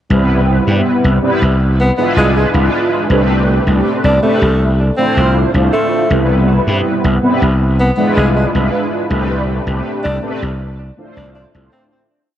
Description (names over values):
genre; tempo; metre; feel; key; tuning
vaporwave; 80 BPM; 4/4; straight; C major; A4 = 441 Hz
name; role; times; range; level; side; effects
mellow synth brass; accompaniment; 0.1-12.1 s; G3 to C5; -15 LUFS; equal; ensemble chorus, diffuse ambient delay
gritty slap bass; bass; 0.1-11.7 s; C2 to G2; -13 LUFS; equal; overdrive
clear alto saxophone; melody; 1.8-12.0 s; G#3 to D4; -18 LUFS; equal; tape echo
room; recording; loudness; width
moderate plate reverb, RT60 2.9 s; dreamy mix soaked in reverb, cassette tape; -11 LUFS; side -11 dB against mid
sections
0.1-12.1 groove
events
fade-out 8.1-12.1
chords
0.1 Cmaj7; 1.6 E7b9/C; 3.1 Am11/C; 4.6 Dm9/C; 6.1 Cmaj7; 7.6 E7b9/C; 9.1 Am11/C; 10.6 Dm9/C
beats
| 0.10 0.85 1.60 2.35 | 3.10 3.85 4.60 5.35 | 6.10 6.85 7.60 8.35 | 9.10 9.85 10.60 11.35